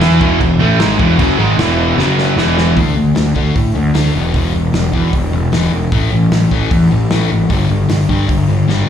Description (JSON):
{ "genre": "punk rock", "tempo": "152 BPM", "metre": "4/4", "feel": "straight", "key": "unclear", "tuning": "A4 = 445 Hz", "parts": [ { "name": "cranked stack guitar", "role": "riff", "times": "0.0-2.8 s", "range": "E2 to E4", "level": "-16 LUFS", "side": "right 2 dB", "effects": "overdrive" }, { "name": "sludgy distorted guitar", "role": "riff", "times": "0.0-8.9 s", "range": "E2 to E4", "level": "-16 LUFS", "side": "left 6 dB", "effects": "overdrive, slapback echo" }, { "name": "tight distorted guitar", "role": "riff", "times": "0.0-2.8 s", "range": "E2 to E4", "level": "-19 LUFS", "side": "right 13 dB", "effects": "distortion, slapback echo" }, { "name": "fuzz picked electric bass", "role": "bass", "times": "0.0-8.9 s", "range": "E1 to A2", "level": "-14 LUFS", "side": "right 1 dB", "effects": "overdrive" }, { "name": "loose indie drum kit", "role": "drums", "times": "0.0-8.8 s", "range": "crash cymbal, hi-hat, kick drum, snare drum", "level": "-19 LUFS", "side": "right 1 dB", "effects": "none" } ], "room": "studio reverb", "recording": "live gig heard through the venue's PA, club reverb", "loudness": "-11 LUFS", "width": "side -9 dB against mid", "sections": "0.0-2.8 A section; 2.8-8.9 B section", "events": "drum fill 2.0-2.8, 8.7", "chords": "0.0 E; 2.0 F#5; 2.4 E5; 2.8 D5; 4.1 E5; 5.9 A5; 7.5 G5" }